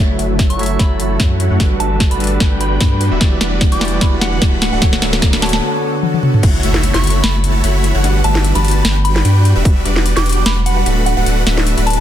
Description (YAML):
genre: future bass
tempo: 149 BPM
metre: 4/4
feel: swing 54% on 16ths, half-time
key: unclear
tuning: A4 = 440 Hz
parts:
  - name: barky tine electric piano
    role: accompaniment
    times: 0.0-6.5 s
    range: D3 to E5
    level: -22 LUFS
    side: right 2 dB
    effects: medium stereo tremolo, sidechain pumping, ping-pong delay
  - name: shimmering ambient pad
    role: sustained chords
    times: 0.0-12.0 s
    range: D3 to F#5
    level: -27 LUFS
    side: left 1 dB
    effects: none
  - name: supersaw chords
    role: riff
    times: 0.0-12.0 s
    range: G3 to B5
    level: -20 LUFS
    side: equal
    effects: sidechain pumping, low-pass filter
  - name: saturated sub bass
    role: bass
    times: 0.0-12.0 s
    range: D1 to G2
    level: -16 LUFS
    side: equal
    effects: sidechain pumping
  - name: riser, swell and impact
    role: sound effects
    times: 0.0-8.0 s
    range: none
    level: -28 LUFS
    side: left 1 dB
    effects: none
  - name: trap drum kit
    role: drums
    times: 0.2-12.0 s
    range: crash cymbal, hi-hat, snare drum, toms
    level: -18 LUFS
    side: left 1 dB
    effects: overdrive
  - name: electronic kick drum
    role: drums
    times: 0.4-6.5, 9.7 s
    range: none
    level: -14 LUFS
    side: equal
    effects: overdrive
  - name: soft synth bell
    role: melody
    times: 0.5-12.0 s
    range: F#5 to D6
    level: -23 LUFS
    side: right 1 dB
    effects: chorus, phaser, sidechain pumping, ping-pong delay
room: light reverb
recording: dense, heavily limited modern master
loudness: -12 LUFS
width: side -11 dB against mid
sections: 0.0-6.4 A section; 6.4-12.0 B section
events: build-up 0.0-6.4; drum fill 0.0-5.6, 6.0-6.4; filter sweep on supersaw synth 0.0-6.4; swell 5.6-6.4; drop 6.4-12.0; impact 6.4-8.0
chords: 0.0 F#m7; 1.6 Gmaj7; 3.0 Em9; 4.6 Bm7/D; 6.4 F#m7; 8.0 Gmaj7; 9.4 Em9; 11.1 Bm7/D